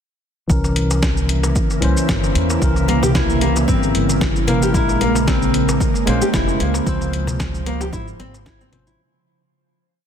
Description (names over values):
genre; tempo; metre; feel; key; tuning
organic downtempo; 113 BPM; 4/4; swing 55% on 16ths; C phrygian dominant; A4 = 440 Hz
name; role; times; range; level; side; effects
bell-like tine electric piano; accompaniment; 0.5-9.0 s; E3 to C5; -22 LUFS; left 2 dB; sidechain pumping, low-pass filter, tape echo
ethereal airy pad; sustained chords; 1.3-9.0 s; Db3 to C5; -24 LUFS; right 2 dB; ensemble chorus, built-in reverb, phaser, sidechain pumping
upright bass; bass; 0.5-8.9 s; F1 to E2; -21 LUFS; equal; none
dusty soul sampler-style drum kit; drums; 0.5-9.0 s; hi-hat, shaker, snare drum; -25 LUFS; equal; none
electronic kick drum; drums; 0.5-8.6 s; none; -22 LUFS; equal; overdrive
darbuka; percussion; 0.6-8.8 s; none; -28 LUFS; left 2 dB; none
nylon-string guitar; arpeggios; 2.9-9.0 s; Bb3 to G4; -21 LUFS; left 1 dB; tape echo
room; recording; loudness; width
light reverb, digital ambience; dense, heavily limited modern master; -15 LUFS; side -8 dB against mid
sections
0.5-9.0 groove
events
filter sweep on tine electric piano 0.5-9.0; fade-out 6.2-9.0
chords
0.5 C7b9; 4.7 Bbm7; 6.9 Dbmaj7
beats
| 0.50 1.03 1.56 2.09 | 2.62 3.15 3.68 4.21 | 4.75 5.28 5.81 6.34 | 6.87 7.40 7.93 8.46